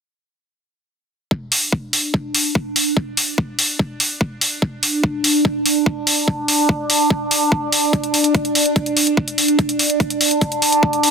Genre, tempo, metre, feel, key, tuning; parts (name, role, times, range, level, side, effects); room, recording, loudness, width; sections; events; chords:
psychedelic trance; 145 BPM; 4/4; straight; A4 = 443 Hz
overtone-sweeping drone; sustained chords; 2.0-11.1 s; D4; -19 LUFS; right 1 dB; chorus, built-in reverb, sidechain pumping
electronic kick drum; drums; 1.3-10.9 s; -20 LUFS; equal; overdrive, high-pass filter on kick
electronic hi-hat; drums; 1.5-11.1 s; -17 LUFS; equal; overdrive
moderate plate reverb, RT60 2.0 s; dense, heavily limited modern master; -15 LUFS; side -6 dB against mid
1.3-11.1 A section